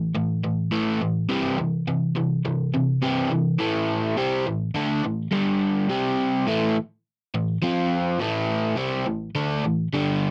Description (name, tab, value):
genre	rock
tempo	104 BPM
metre	4/4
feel	straight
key	A minor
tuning	A4 = 440 Hz
part	crunchy overdriven guitar	solo	0.0-10.3 s	G2 to F4	-24 LUFS	equal	none
room	moderate booth ambience, RT60 0.3 s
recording	dry, close 1970s-style studio recording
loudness	-24 LUFS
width	mono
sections	0.0-3.6 A section; 3.6-10.3 B section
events	none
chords	0.0 A5; 1.3 C; 3.6 Am; 5.3 G5; 5.9 C5; 6.5 A5; 7.6 F5; 8.2 Am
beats	0.15 0.73 | 1.30 1.88 2.45 3.03 | 3.60 4.18 4.75 5.33 | 5.90 6.47 7.05 7.62 | 8.20 8.77 9.35 9.92